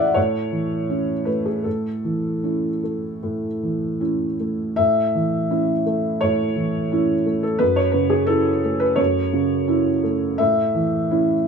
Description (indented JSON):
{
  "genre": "neoclassical minimalist piano",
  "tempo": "75-88 BPM",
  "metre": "4/4",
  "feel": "rubato",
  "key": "A major",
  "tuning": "A4 = 440 Hz",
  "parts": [
    { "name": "felt-muted upright piano", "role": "solo", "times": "0.0-11.5 s", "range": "F#2 to F#5", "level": "-18 LUFS", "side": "equal", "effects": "none" }
  ],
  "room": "moderate studio reverb, RT60 0.5 s",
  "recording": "band playing live in one room",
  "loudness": "-19 LUFS",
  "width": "side -6 dB against mid",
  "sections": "0.0-4.8 A section; 4.8-11.5 A section",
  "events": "none",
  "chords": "0.0 A; 7.6 F#m7; 10.4 A",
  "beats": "0.16 0.90 | 1.65 2.44 3.23 4.01 | 4.78 5.51 6.21 6.91 | 7.60 8.29 8.99 9.69 | 10.39 11.10"
}